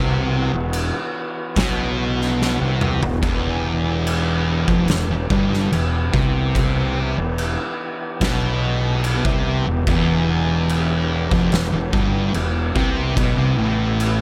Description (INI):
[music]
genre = stoner and doom metal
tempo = 72 BPM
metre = 4/4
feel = straight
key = E minor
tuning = A4 = 439 Hz
[part]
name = percussive tonewheel organ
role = sustained chords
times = 0.0-14.2 s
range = E3 to G4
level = -32 LUFS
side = equal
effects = slow rotary speaker
[part]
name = thick fuzz guitar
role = riff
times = 0.0-14.2 s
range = E2 to C3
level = -25 LUFS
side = equal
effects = distortion
[part]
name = thick fuzz guitar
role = riff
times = 0.0-14.2 s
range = E2 to C3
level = -26 LUFS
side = equal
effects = distortion
[part]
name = fuzz fingered electric bass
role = bass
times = 0.0-14.2 s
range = E1 to C2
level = -26 LUFS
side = equal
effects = overdrive
[part]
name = oversized low-tuned drum kit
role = drums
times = 0.7-14.2 s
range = crash cymbal, kick drum, snare drum, toms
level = -26 LUFS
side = equal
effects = none
[sound]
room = light reverb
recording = none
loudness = -20 LUFS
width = mono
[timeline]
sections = 0.0-14.2 A section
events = drum fill 2.4-3.2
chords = 0.0 Em